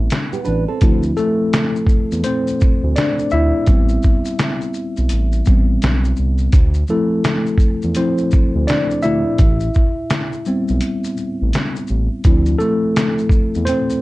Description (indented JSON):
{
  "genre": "lo-fi hip hop",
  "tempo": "84 BPM",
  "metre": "4/4",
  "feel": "swing 64% on 16ths",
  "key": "unclear",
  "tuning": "A4 = 441 Hz",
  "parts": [
    { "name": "mellow tine electric piano", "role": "accompaniment", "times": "0.0-14.0 s", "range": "F3 to E5", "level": "-19 LUFS", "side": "left 1 dB", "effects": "medium stereo tremolo, cassette tape" },
    { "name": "smooth synth bass", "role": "bass", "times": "0.0-13.7 s", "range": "A1 to E2", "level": "-18 LUFS", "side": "equal", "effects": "none" },
    { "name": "trip hop sampler-style drum kit", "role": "drums", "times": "0.1-14.0 s", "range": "hi-hat, kick drum, shaker, snare drum", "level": "-16 LUFS", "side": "equal", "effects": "none" },
    { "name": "nylon-string guitar", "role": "second line", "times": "0.3-1.0 s", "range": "B3 to B4", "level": "-24 LUFS", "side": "right 6 dB", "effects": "tape echo" }
  ],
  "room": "moderate studio ambience, RT60 0.5 s",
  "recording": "dark, warm production, nothing above 10.9 kHz",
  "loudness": "-14 LUFS",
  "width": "side -19 dB against mid",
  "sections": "0.0-14.0 A section",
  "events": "tine electric piano solo 0.0-14.0",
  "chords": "0.0 Am9; 0.8 Dm9; 3.7 Am9; 6.5 Dm9; 9.4 Am9; 12.2 Dm9"
}